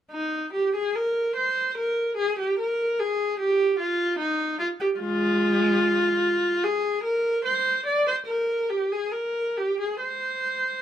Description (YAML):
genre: classical, baroque-style suite movement for unaccompanied viola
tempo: 73 BPM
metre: 4/4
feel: uneven beats, rubato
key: unclear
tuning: A4 = 439 Hz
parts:
  - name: rich viola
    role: solo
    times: 0.1-10.8 s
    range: Ab3 to D5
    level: -22 LUFS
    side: equal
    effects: none
room: light reverb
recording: none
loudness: -22 LUFS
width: side -10 dB against mid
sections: 0.1-10.8 A section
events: none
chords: none